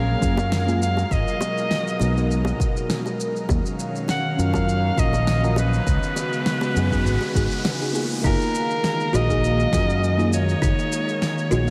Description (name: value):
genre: sunset chillout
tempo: 101 BPM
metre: 4/4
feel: swing 54% on 16ths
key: F# major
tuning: A4 = 440 Hz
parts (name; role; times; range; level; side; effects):
- breathy soprano saxophone; melody; 0.0-11.7 s; A#4 to F#5; -29 LUFS; equal; delay, shimmer reverb
- mellow FM electric piano; accompaniment; 0.0-11.7 s; A#3 to E#5; -31 LUFS; equal; chorus, phaser, delay, shimmer reverb
- airy breathy pad; sustained chords; 0.0-11.7 s; B2 to E#5; -30 LUFS; equal; chorus, shimmer reverb
- fretless electric bass; bass; 0.0-11.7 s; F#1 to F#2; -24 LUFS; equal; subtle chorus
- electronic kick drum; drums; 0.2-10.7 s; none; -27 LUFS; equal; none
- electronic shaker and snare drum; drums; 0.2-11.7 s; none; -33 LUFS; equal; none
- bongos; percussion; 0.4-7.8 s; none; -36 LUFS; equal; none
- riser; sound effects; 5.6-8.2 s; none; -39 LUFS; equal; none
- buzzing kalimba; arpeggios; 8.2-11.7 s; D#4 to F#4; -32 LUFS; equal; delay, shimmer reverb
room: moderate huge ambient reverb, RT60 8.2 s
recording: dreamy mix soaked in reverb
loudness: -22 LUFS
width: mono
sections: 0.0-8.2 A section; 8.2-11.7 B section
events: riser 5.6-8.2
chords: 0.0 F#maj9; 1.1 G#m9; 3.5 D#m9; 5.9 C#7sus4; 8.2 F#maj13